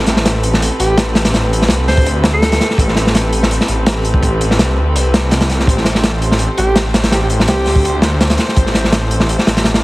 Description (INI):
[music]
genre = drum and bass, jungle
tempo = 166 BPM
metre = 4/4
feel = swing 54% on 16ths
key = A minor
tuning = A4 = 440 Hz
[part]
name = rich chamber string section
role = sustained chords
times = 0.0-9.8 s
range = C4 to C5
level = -21 LUFS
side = equal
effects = none
[part]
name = detuned saw bass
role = bass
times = 0.0-9.8 s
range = A1 to D2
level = -16 LUFS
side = equal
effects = none
[part]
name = crunchy breakbeat drum kit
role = drums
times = 0.1-9.8 s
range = hi-hat, kick drum, snare drum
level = -14 LUFS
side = equal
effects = none
[part]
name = breathy alto saxophone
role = melody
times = 0.8-2.8, 6.6-8.0 s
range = G4 to C5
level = -20 LUFS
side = right 1 dB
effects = dub echo
[sound]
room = light reverb, studio reverb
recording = heavily compressed radio sound, vinyl crackle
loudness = -11 LUFS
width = side -19 dB against mid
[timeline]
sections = 0.0-9.8 A section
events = none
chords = 0.0 Am9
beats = 0.25 0.62 0.98 | 1.34 1.70 2.06 2.42 | 2.78 3.15 3.51 3.87 | 4.23 4.59 4.95 5.31 | 5.68 6.04 6.40 6.76 | 7.12 7.48 7.84 8.21 | 8.57 8.93 9.29 9.65